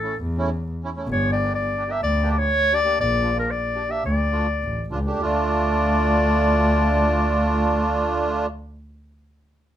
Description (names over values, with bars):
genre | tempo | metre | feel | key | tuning
klezmer | 97-129 BPM | 4/4 | straight | D harmonic minor | A4 = 440 Hz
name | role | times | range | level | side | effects
clear clarinet | melody | 0.0-8.5 s | A4 to E5 | -23 LUFS | left 2 dB | none
accordion | accompaniment | 0.0-8.5 s | A3 to G4 | -23 LUFS | right 2 dB | light tremolo tuning
rich double bass | bass | 0.2-8.5 s | G1 to E2 | -23 LUFS | equal | none
room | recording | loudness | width
light reverb | minimal, uncompressed stereo recording | -19 LUFS | side -11 dB against mid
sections
0.0-5.2 A section; 5.2-9.8 B section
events
slowing down 1.1-5.2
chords
0.0 A; 1.1 Gm; 3.0 Bb; 4.1 Dm